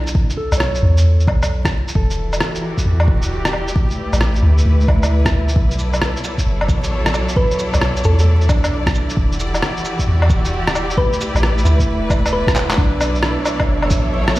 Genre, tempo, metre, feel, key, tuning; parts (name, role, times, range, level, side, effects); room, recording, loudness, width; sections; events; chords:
future garage; 133 BPM; 4/4; swing 65% on 16ths; B minor; A4 = 440 Hz
mellow electric guitar; accompaniment; 0.0-5.7, 8.5-14.4 s; D4 to C#5; -27 LUFS; right 2 dB; sidechain pumping, dub echo
soft 808-style bass; bass; 0.0-14.4 s; D1 to E2; -16 LUFS; equal; sidechain pumping
electronic kick drum; drums; 0.1-14.0 s; -17 LUFS; equal
electronic shaker, woodblock, rim click, cabasa and handclaps; drums; 0.1-14.4 s; -22 LUFS; equal
clear studio string section; sustained chords; 2.0-14.4 s; B2 to D5; -23 LUFS; equal; sidechain pumping
thumb-piano-like synth pluck; melody; 7.4-8.2, 11.0-12.8 s; A4 to B4; -25 LUFS; equal; chorus, cassette tape, dub echo
wind-like tuned noise texture; texture; 13.2-14.4 s; E5; -30 LUFS; right 5 dB; built-in reverb
digital ambience; played on a big sound system in a bare room, large studio reverb, vinyl crackle; -14 LUFS; side -17 dB against mid
0.0-12.8 A section; 12.8-14.4 B section
drum fill 12.6; band accent 12.7
0.0 B9sus4; 2.0 Em7; 3.8 A7sus4; 5.6 Bm11; 9.2 Em7; 11.0 A7sus4; 12.8 Bm11